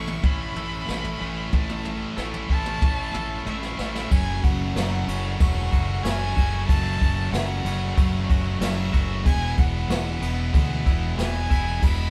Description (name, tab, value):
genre	post-rock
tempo	93 BPM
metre	4/4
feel	straight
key	unclear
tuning	A4 = 440 Hz
part	dark violin	melody	0.0-12.1 s	E5 to C#6	-35 LUFS	equal	none
part	twangy electric guitar	arpeggios	0.0-12.1 s	E2 to A4	-39 LUFS	equal	none
part	thick fuzz guitar	riff	0.0-12.1 s	E2 to A3	-34 LUFS	equal	distortion
part	tight distorted guitar	riff	0.0-12.1 s	F#2 to E4	-35 LUFS	equal	distortion
part	fuzz fingered electric bass	bass	0.0-12.1 s	E1 to D2	-30 LUFS	equal	overdrive
part	jazz brush drum kit	drums	0.1-12.0 s	crash cymbal, kick drum, ride cymbal, snare drum, toms	-26 LUFS	equal	none
room	light reverb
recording	band playing live in one room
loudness	-24 LUFS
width	mono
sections	0.0-4.1 A section; 4.1-12.1 B section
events	build-up 0.0-4.1; drum fill 3.5-4.1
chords	0.0 A; 4.1 F#m; 9.3 E